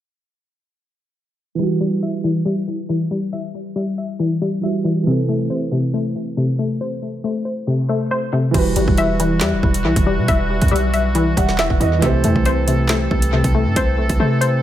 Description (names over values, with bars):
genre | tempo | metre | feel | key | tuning
hip hop, drill | 138 BPM | 4/4 | half-time | E minor | A4 = 440 Hz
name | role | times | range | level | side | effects
dark concert grand piano | accompaniment | 1.6-14.6 s | E3 to F#5 | -24 LUFS | right 7 dB | none
hollow square pluck | arpeggios | 1.6-14.6 s | C3 to E5 | -19 LUFS | left 3 dB | chorus, tape echo
clear woodwind section | sustained chords | 8.5-14.6 s | E3 to A4 | -26 LUFS | right 1 dB | none
hard-hitting 808-style bass | bass | 8.5-14.6 s | E1 to C3 | -20 LUFS | right 1 dB | none
drill drum kit | drums | 8.5-14.5 s | crash cymbal, handclaps, hi-hat, kick drum, snare drum | -20 LUFS | right 1 dB | tape echo
room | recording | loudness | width
light reverb, digital ambience | echo-heavy mix, low-pass filter | -16 LUFS | side -12 dB against mid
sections
1.6-8.5 A section; 8.5-14.6 B section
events
filter sweep 1.6-8.5; grand piano fill 11.2-12.0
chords
1.6 Emadd9; 5.1 C6; 8.5 Emadd9; 12.0 C6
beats
| 1.59 2.02 2.46 2.89 | 3.33 3.76 4.20 4.63 | 5.07 5.50 5.93 6.37 | 6.80 7.24 7.67 8.11 | 8.54 8.98 9.41 9.85 | 10.28 10.72 11.15 11.59 | 12.02 12.46 12.89 13.33 | 13.76 14.20